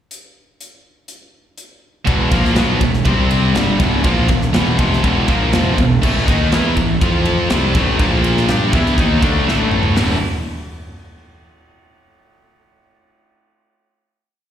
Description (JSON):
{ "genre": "heavy metal", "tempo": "122 BPM", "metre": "4/4", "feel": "straight", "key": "unclear", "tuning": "A4 = 439 Hz", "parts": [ { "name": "modern studio drum kit", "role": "drums", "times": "0.1-10.1 s", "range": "crash cymbal, hi-hat, kick drum, ride cymbal, snare drum, toms", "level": "-20 LUFS", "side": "equal", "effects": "none" }, { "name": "scooped high-gain guitar", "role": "riff", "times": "2.0-10.1 s", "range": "E2 to G4", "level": "-20 LUFS", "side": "right 10 dB", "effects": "distortion" }, { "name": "distorted electric guitar", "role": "riff", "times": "2.1-10.2 s", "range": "E2 to G4", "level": "-23 LUFS", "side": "left 1 dB", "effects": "distortion" }, { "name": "high-gain distorted guitar", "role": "riff", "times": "2.1-10.2 s", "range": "E2 to G4", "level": "-20 LUFS", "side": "left 8 dB", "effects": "distortion, slapback echo" }, { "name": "fuzz picked electric bass", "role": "bass", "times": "2.1-10.2 s", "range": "E1 to G2", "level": "-18 LUFS", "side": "equal", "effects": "overdrive" } ], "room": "light reverb, studio reverb", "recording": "live gig heard through the venue's PA, recital hall reverb", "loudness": "-13 LUFS", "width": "side -10 dB against mid", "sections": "0.1-2.1 pickup bar; 2.1-10.0 riff; 10.0-11.9 final chord", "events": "drum fill 9.5-10.0", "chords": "0.1 N.C.; 2.1 E5; 3.1 C5; 3.5 Em; 6.0 A5; 7.0 F5; 7.5 A5; 8.0 A#5; 8.5 A5; 10.0 E5", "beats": "| 0.10 0.60 1.09 1.58 | 2.07 2.56 3.06 3.55 | 4.04 4.54 5.03 5.52 | 6.02 6.51 7.00 7.50 | 7.99 8.48 8.97 9.47 | 9.96" }